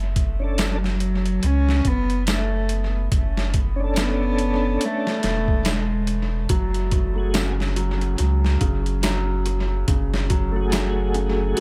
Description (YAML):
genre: trip hop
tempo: 71 BPM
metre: 4/4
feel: swing 59% on 16ths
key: unclear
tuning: A4 = 440 Hz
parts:
  - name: warm sub bass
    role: bass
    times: 0.0-11.5 s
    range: E1 to C#2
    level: -25 LUFS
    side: equal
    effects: none
  - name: boom bap sampler-style drum kit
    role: drums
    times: 0.2-11.6 s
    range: hi-hat, kick drum, snare drum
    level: -27 LUFS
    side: equal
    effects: tape echo
  - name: tonewheel organ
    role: accompaniment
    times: 0.4-11.6 s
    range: A3 to A4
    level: -30 LUFS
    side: equal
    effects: chorus vibrato, slow rotary speaker, tremolo, tape echo
  - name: warm cello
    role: melody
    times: 0.6-6.3 s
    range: F#3 to C#4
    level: -29 LUFS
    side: equal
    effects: tape echo
  - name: tambourine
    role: percussion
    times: 0.6-10.9 s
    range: none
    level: -38 LUFS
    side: equal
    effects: none
  - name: felt-muted upright piano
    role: arpeggios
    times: 6.5-11.6 s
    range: C#3 to F#3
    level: -30 LUFS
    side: equal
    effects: vintage 12-bit sampler grit, tape echo
room: small room ambience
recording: echo-heavy mix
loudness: -22 LUFS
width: mono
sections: 0.0-11.6 A section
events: none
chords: 0.0 Bm7/F# (rootless); 6.5 F#madd9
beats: 0.58 1.43 2.27 | 3.12 3.96 4.81 5.66 | 6.50 7.34 8.19 9.04 | 9.88 10.73 11.57